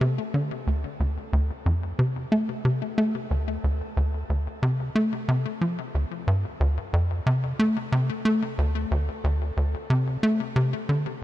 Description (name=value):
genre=ambient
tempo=91 BPM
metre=4/4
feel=straight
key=D minor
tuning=A4 = 440 Hz
part: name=tight sequencer bass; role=solo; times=0.0-11.1 s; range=D2 to A3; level=-23 LUFS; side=equal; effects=cassette tape, ping-pong delay
room=light reverb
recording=none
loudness=-23 LUFS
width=side -14 dB against mid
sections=0.0-11.2 A section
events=none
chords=none